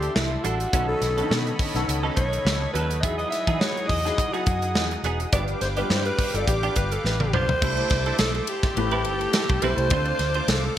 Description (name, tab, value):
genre	polished 1980s jazz-funk pop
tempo	105 BPM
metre	4/4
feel	swing 54% on 16ths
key	unclear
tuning	A4 = 439 Hz
part	breathy alto saxophone	melody	0.0-10.8 s	E4 to E5	-27 LUFS	equal	none
part	warm concert grand piano	accompaniment	0.0-10.8 s	D3 to D5	-31 LUFS	left 3 dB	ensemble chorus
part	warm analog pad	sustained chords	0.0-10.8 s	G#4 to D#6	-33 LUFS	equal	chorus, tremolo
part	direct-recorded clean electric guitar	riff	0.0-10.7 s	F3 to C5	-32 LUFS	right 7 dB	ensemble chorus
part	vintage muted fingered electric bass	bass	0.0-10.7 s	E1 to E3	-27 LUFS	equal	none
part	modern studio drum kit	drums	0.0-10.6 s	crash cymbal, hi-hat, kick drum, ride cymbal, snare drum, toms	-26 LUFS	equal	gated reverb
room	moderate plate reverb, RT60 1.4 s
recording	bright 1980s-style digital production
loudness	-21 LUFS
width	side -11 dB against mid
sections	0.0-7.6 A section; 7.6-10.8 B section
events	alto saxophone solo 0.0-7.6; drum fill 7.0-7.6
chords	0.0 C69; 0.7 B9; 3.0 Emaj9; 5.3 G7; 7.6 C69; 8.8 Am9; 9.9 Dm7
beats	0.16 | 0.73 1.31 1.88 2.46 | 3.03 3.61 4.18 4.75 | 5.33 5.90 6.48 7.05 | 7.62 8.20 8.77 9.34 | 9.91 10.49